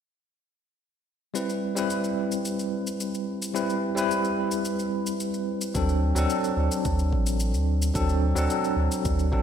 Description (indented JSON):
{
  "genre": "sunset chillout",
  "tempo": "109 BPM",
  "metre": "4/4",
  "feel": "straight",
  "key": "C lydian",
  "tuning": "A4 = 445 Hz",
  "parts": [
    { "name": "bell-like tine electric piano", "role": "accompaniment", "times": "1.3-9.4 s", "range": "F#3 to B4", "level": "-26 LUFS", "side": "equal", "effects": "medium stereo tremolo, auto-pan, tape echo" },
    { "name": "shaker", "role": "drums", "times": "1.4-9.3 s", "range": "none", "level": "-36 LUFS", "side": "left 3 dB", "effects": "overdrive" },
    { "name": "warm sub bass", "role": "bass", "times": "5.7-9.4 s", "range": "A1 to D2", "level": "-24 LUFS", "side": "equal", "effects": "none" },
    { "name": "electronic kick drum", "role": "drums", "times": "5.7-9.4 s", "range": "none", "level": "-30 LUFS", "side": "equal", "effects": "overdrive" }
  ],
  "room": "moderate lush hall reverb, RT60 1.7 s",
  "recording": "dreamy mix soaked in reverb",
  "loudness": "-24 LUFS",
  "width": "side -8 dB against mid",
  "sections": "1.3-9.4 A section",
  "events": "none",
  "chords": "1.3 Cmaj7; 5.8 D7"
}